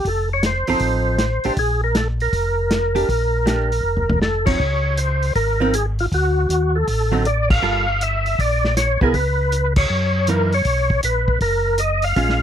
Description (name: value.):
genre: soul jazz organ trio.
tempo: 158 BPM.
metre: 4/4.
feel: swing 66% on 8ths.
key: unclear.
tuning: A4 = 440 Hz.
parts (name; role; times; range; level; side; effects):
percussive tonewheel organ; melody; 0.0-12.4 s; F4 to F5; -20 LUFS; equal; slow rotary speaker, overdrive, chorus vibrato.
mellow tonewheel organ; bass; 0.0-12.4 s; F1 to Gb2; -21 LUFS; equal; slow rotary speaker.
warm soul drum kit; drums; 0.0-12.4 s; crash cymbal, hi-hat, kick drum, snare drum, toms; -23 LUFS; equal; none.
archtop guitar, miked and amplified; accompaniment; 0.7-12.4 s; D3 to A4; -22 LUFS; right 4 dB; none.
room: little or no reverb.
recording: close, detailed microphones.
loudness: -16 LUFS.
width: side -9 dB against mid.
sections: 0.0-4.6 A section; 4.6-12.4 B section.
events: drum fill 3.8-4.2; band accent 7.4, 9.7.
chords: 0.0 F7; 1.6 Bbmaj7(no3); 4.6 Dbmaj7(no3); 6.1 D(b9); 7.6 Gm9; 9.1 Bsus2/C#; 9.9 Gb6; 10.7 Bsus2.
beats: | 0.05 0.43 0.81 1.19 | 1.57 1.95 2.33 2.71 | 3.09 3.47 3.85 4.22 | 4.60 4.98 5.36 5.74 | 6.12 6.50 6.88 7.25 | 7.63 8.01 8.39 8.77 | 9.15 9.53 9.90 10.28 | 10.66 11.04 11.41 11.79 | 12.17.